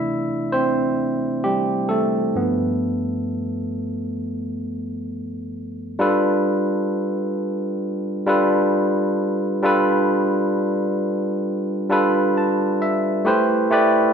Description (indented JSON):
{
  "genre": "R&B",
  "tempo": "66 BPM",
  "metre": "4/4",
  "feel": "swing 60% on 16ths",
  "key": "unclear",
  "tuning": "A4 = 440 Hz",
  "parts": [
    { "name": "barky tine electric piano", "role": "solo", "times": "0.0-14.1 s", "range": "G2 to A5", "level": "-19 LUFS", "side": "equal", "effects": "none" }
  ],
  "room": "wet large studio reverb, RT60 1.3 s",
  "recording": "band playing live in one room",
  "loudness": "-19 LUFS",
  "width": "side -7 dB against mid",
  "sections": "0.0-6.0 A section; 6.0-13.3 B section",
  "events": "tine electric piano solo 0.0-6.0; tine electric piano fill 11.9-13.3",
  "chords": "0.0 C69; 2.4 G9; 13.3 Am7"
}